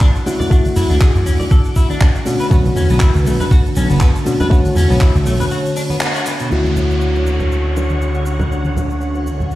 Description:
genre	nu-disco, nu disco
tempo	120 BPM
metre	4/4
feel	swing 55% on 16ths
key	unclear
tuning	A4 = 436 Hz
part	reed electric piano	accompaniment	0.0-9.6 s	D3 to C#5	-20 LUFS	left 1 dB	fast tremolo, tape echo
part	string machine, full ensemble	sustained chords	0.0-9.6 s	D3 to D6	-24 LUFS	left 1 dB	ensemble chorus, sidechain pumping
part	electric guitar at the edge of break-up	riff	0.0-6.5 s	B2 to D5	-25 LUFS	left 2 dB	wide subtle chorus, tape echo
part	damped 70s drum kit	drums	0.0-6.6 s	crash cymbal, handclaps, hi-hat, shaker	-25 LUFS	equal	low-pass filter on hats, small room ambience, low-pass filter on cymbals, low-pass filter on snare, low-pass filter on perc, low-pass filter on room
part	electronic kick drum	drums	0.0-5.1 s	none	-11 LUFS	equal	small room ambience
part	cabasa, congas and bongos	percussion	0.0-9.6 s	none	-25 LUFS	right 1 dB	none
part	vintage slap bass	bass	0.8-9.6 s	F#1 to F#2	-16 LUFS	equal	none
part	downlifter	sound effects	6.5-9.6 s	none	-29 LUFS	equal	none
room	light reverb, studio reverb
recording	played on a big sound system in a bare room, stone room reverb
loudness	-12 LUFS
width	side -16 dB against mid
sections	0.0-6.5 A section; 6.5-9.6 B section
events	break 5.5-6.5; band accent 6.0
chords	0.0 Dmaj7; 2.3 Bm7; 6.5 Dmaj7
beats	0.01 | 0.51 1.01 1.51 2.01 | 2.51 3.01 3.51 4.01 | 4.51 5.01 5.51 6.01 | 6.51 7.01 7.51 8.01 | 8.51 9.01 9.51

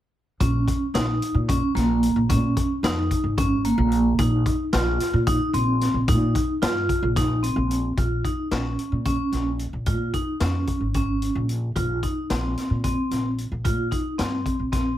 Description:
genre	progressive instrumental, band music in an uneven meter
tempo	222 BPM (eighths)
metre	7/8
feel	straight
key	Bb dorian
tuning	A4 = 440 Hz
part	vibraphone with medium mallets	arpeggios	0.4-15.0 s	Bb3 to F4	-24 LUFS	right 1 dB	slapback echo
part	upright bass	bass	0.4-15.0 s	Ab1 to Bb2	-25 LUFS	equal	none
part	raw garage drum kit	drums	0.4-14.9 s	hi-hat, kick drum, snare drum	-27 LUFS	left 2 dB	none
room	light reverb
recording	none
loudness	-21 LUFS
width	side -12 dB against mid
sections	0.4-8.0 A section; 8.0-15.0 B section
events	none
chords	0.4 Bbm7; 4.2 Cm7/Bb; 8.0 Bbm7; 11.8 Cm7/Bb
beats	| 0.41 0.68 0.95 1.22 1.49 1.76 2.03 | 2.30 2.57 2.84 3.11 3.38 3.65 3.92 | 4.19 4.46 4.73 5.00 5.27 5.54 5.81 | 6.08 6.35 6.62 6.89 7.16 7.43 7.71 | 7.97 8.24 8.52 8.79 9.06 9.33 9.60 | 9.87 10.14 10.41 10.68 10.95 11.22 11.49 | 11.76 12.03 12.30 12.57 12.84 13.11 13.38 | 13.65 13.92 14.19 14.46 14.72

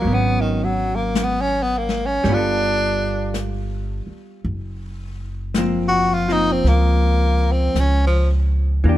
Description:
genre	jazz ballad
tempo	54 BPM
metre	4/4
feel	swing 66% on 8ths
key	unclear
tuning	A4 = 440 Hz
part	bright tenor saxophone	melody	0.0-8.3 s	Eb3 to Gb4	-20 LUFS	equal	none
part	vintage hollow-body jazz guitar	accompaniment	0.0-9.0 s	E3 to A4	-24 LUFS	equal	none
part	upright bass	bass	0.1-9.0 s	Gb1 to E2	-20 LUFS	equal	none
part	jazz brush drum kit	drums	0.1-9.0 s	brushed snare drum, hi-hat, snare drum	-28 LUFS	left 2 dB	none
room	little or no reverb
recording	minimal, uncompressed stereo recording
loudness	-17 LUFS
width	side -14 dB against mid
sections	0.0-9.0 A section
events	tenor saxophone solo 0.0-9.0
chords	0.0 Abm7; 2.2 G9; 4.5 Gbmaj7#11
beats	| 0.04 1.15 2.25 3.35 | 4.45 5.55 6.65 7.75 | 8.85

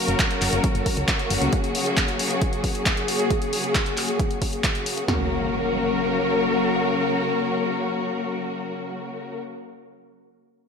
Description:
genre	uplifting trance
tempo	135 BPM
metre	4/4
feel	straight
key	F# major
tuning	A4 = 440 Hz
part	clear symphonic string section	sustained chords	0.0-9.4 s	C#3 to A#4	-23 LUFS	left 2 dB	sidechain pumping
part	solid FM bass	bass	0.1-1.5 s	F#1 to C#2	-25 LUFS	equal	sidechain pumping
part	big-room dance drum kit	drums	0.1-5.1 s	handclaps, hi-hat	-26 LUFS	equal	studio reverb
part	punchy analog drum machine	drums	0.2-5.2 s	kick drum, snare drum, toms	-25 LUFS	equal	overdrive, studio reverb
part	impact	sound effects	5.1-9.8 s	none	-33 LUFS	left 1 dB	none
room	wet lush hall reverb, RT60 2.1 s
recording	dreamy mix soaked in reverb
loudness	-21 LUFS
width	side -6 dB against mid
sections	0.0-5.1 A section; 5.1-8.6 B section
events	none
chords	0.0 F#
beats	0.19 0.64 1.08 | 1.53 1.97 2.42 2.86 | 3.31 3.75 4.19 4.64 | 5.08 5.53 5.97 6.42 | 6.86 7.30 7.75 8.19

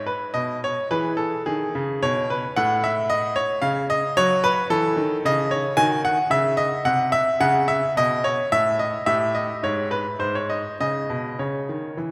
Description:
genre	classical, baroque-style suite movement for grand piano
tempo	99-114 BPM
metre	3/4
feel	rubato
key	C# minor from 5.8 s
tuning	A4 = 439 Hz
part	bright baby grand piano	solo	0.0-12.1 s	G#2 to G#5	-22 LUFS	equal	none
room	wet church reverb, RT60 3.0 s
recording	none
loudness	-22 LUFS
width	mono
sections	0.0-12.1 A section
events	none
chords	0.0 N.C.; 0.9 E; 2.6 N.C.; 4.2 F#m; 5.8 Emaj13; 6.9 N.C.; 7.4 C#5; 8.5 N.C.; 9.1 A5; 9.6 N.C.; 10.8 C#5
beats	0.35 | 0.91 1.47 2.03 | 2.58 3.11 3.64 | 4.18 4.71 5.24 | 5.78 6.32 6.86 | 7.41 7.96 8.52 | 9.08 9.63 10.20 | 10.79 11.39 11.98

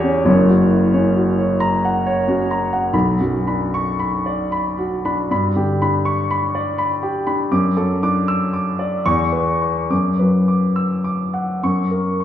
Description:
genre	classical, romantic character piece for solo piano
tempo	65-84 BPM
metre	3/4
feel	rubato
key	B minor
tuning	A4 = 440 Hz
part	warm baby grand piano	solo	0.0-12.2 s	F#1 to E6	-16 LUFS	equal	none
room	wet recital hall reverb, RT60 1.6 s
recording	heard from further back in the room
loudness	-16 LUFS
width	side -10 dB against mid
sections	0.0-2.9 A section; 2.9-12.2 B section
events	none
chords	0.3 F#; 2.9 Bm; 5.3 G; 7.5 D/F#; 9.1 C#m7/E; 9.9 Bm/F#; 11.6 F#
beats	| 0.27 1.17 2.06 | 2.94 3.74 4.52 | 5.31 6.06 6.79 | 7.52 8.28 9.05 | 9.90 10.76 11.62

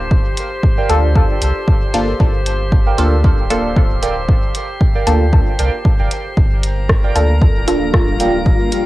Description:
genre	dub techno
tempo	115 BPM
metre	4/4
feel	swing 55% on 16ths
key	G minor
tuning	A4 = 442 Hz
part	pure sine sub bass	bass	0.0-8.5 s	D1 to D2	-18 LUFS	equal	sidechain pumping
part	drifting glass-harmonics texture	texture	0.0-8.9 s	G4 to Bb5	-25 LUFS	left 1 dB	chorus, built-in reverb, sidechain pumping, cassette tape
part	electronic kick drum	drums	0.1-8.6 s	none	-14 LUFS	equal	cassette tape
part	punchy analog drum machine	drums	0.4-8.8 s	hi-hat, rim click	-23 LUFS	equal	cassette tape
part	warbly lo-fi synth keys	riff	0.8-8.3 s	Bb4 to G5	-25 LUFS	right 6 dB	chorus, phaser, sidechain pumping, cassette tape, dub echo
part	filtered dub chord stab	stabs	0.9-7.9 s	Bb3 to A4	-20 LUFS	equal	phaser, sidechain pumping, cassette tape, dub echo
part	granular cloud pad	sustained chords	7.2-8.9 s	G3 to F4	-20 LUFS	left 2 dB	built-in reverb, sidechain pumping, cassette tape
room	little or no reverb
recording	home recording on cassette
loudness	-12 LUFS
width	side -17 dB against mid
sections	0.0-8.9 A section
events	none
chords	0.0 Gm7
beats	| 0.11 0.63 1.16 1.68 | 2.20 2.72 3.24 3.76 | 4.29 4.81 5.33 5.85 | 6.37 6.89 7.42 7.94 | 8.46

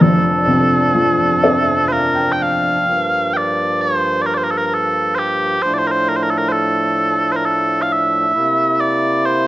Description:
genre	celtic folk, Celtic slow air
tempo	65 BPM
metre	3/4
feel	uneven beats, rubato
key	G dorian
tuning	A4 = 439 Hz
part	mellow small bagpipes	melody	0.0-9.5 s	G4 to G5	-16 LUFS	right 1 dB	none
part	felt-muted upright piano	accompaniment	0.0-2.9 s	F1 to G5	-16 LUFS	left 1 dB	none
part	mellow accordion	sustained chords	0.0-9.5 s	G2 to A5	-21 LUFS	equal	none
room	moderate recital hall reverb, RT60 1.3 s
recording	worn, warbling old tape, cassette tape, warbly pitch drift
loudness	-14 LUFS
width	side -16 dB against mid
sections	0.0-2.9 A section; 2.9-9.5 B section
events	felt piano fill 1.0-2.9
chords	0.0 F6; 2.9 Gm7; 5.6 F6/A; 8.3 C7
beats	| 0.02 0.96 1.92 | 2.87 3.80 4.71 | 5.63 6.53 7.43 | 8.33 9.22

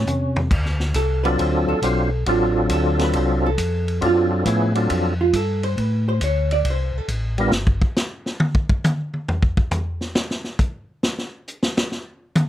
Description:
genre	soul jazz organ trio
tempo	137 BPM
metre	4/4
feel	swing 68% on 8ths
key	unclear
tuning	A4 = 440 Hz
part	overdriven tonewheel organ	melody	0.0-7.5 s	E#3 to C5	-20 LUFS	equal	slow rotary speaker, chorus vibrato
part	mellow tonewheel organ	bass	0.0-7.8 s	G1 to C3	-22 LUFS	equal	overdrive, slow rotary speaker
part	vintage drum kit	drums	0.1-12.5 s	crash cymbal, hi-hat, kick drum, ride cymbal, snare drum, toms	-22 LUFS	equal	none
part	vintage hollow-body jazz guitar	accompaniment	1.0-7.1 s	E#4 to D5	-23 LUFS	right 3 dB	none
room	little or no reverb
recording	close, detailed microphones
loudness	-18 LUFS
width	side -12 dB against mid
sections	0.5-12.5 A section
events	drum fill 0.0-0.5; hollow-body jazz guitar solo 0.5-12.5; drum solo 7.5-12.5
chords	0.0 N.C.; 0.5 D7#9; 7.5 N.C.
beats	0.07 | 0.51 0.95 1.39 1.83 | 2.27 2.71 3.14 3.58 | 4.02 4.46 4.90 5.34 | 5.78 6.21 6.65 7.09 | 7.53 7.97 8.41 8.84 | 9.28 9.72 10.16 10.60 | 11.03 11.47 11.91 12.35

